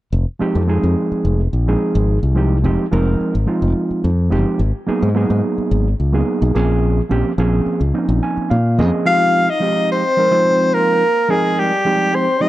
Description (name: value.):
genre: jazz.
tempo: 108 BPM.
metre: 4/4.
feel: straight.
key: F minor.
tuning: A4 = 440 Hz.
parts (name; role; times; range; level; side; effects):
modern bright fingered electric bass; bass; 0.1-8.9 s; F1 to Bb2; -16 LUFS; left 1 dB; none.
overdriven reed electric piano; accompaniment; 0.4-12.5 s; F3 to Ab5; -19 LUFS; right 2 dB; none.
warm soprano saxophone; melody; 9.1-12.5 s; G4 to F5; -15 LUFS; equal; none.
trombone with cup mute; second line; 9.1-12.5 s; G3 to F4; -21 LUFS; left 3 dB; slapback echo.
room: light reverb, studio reverb.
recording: dark, warm production.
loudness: -14 LUFS.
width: side -15 dB against mid.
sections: 0.1-9.1 A section; 9.1-12.5 B section.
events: reed electric piano fill 7.9-9.1.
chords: 0.1 Fm9; 4.6 Abm9; 6.5 Bbm9; 9.1 Fm9.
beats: | 0.13 0.69 1.25 1.80 | 2.36 2.92 3.48 4.04 | 4.59 5.15 5.71 6.27 | 6.83 7.39 7.95 8.50 | 9.06 9.62 10.18 10.73 | 11.29 11.85 12.41.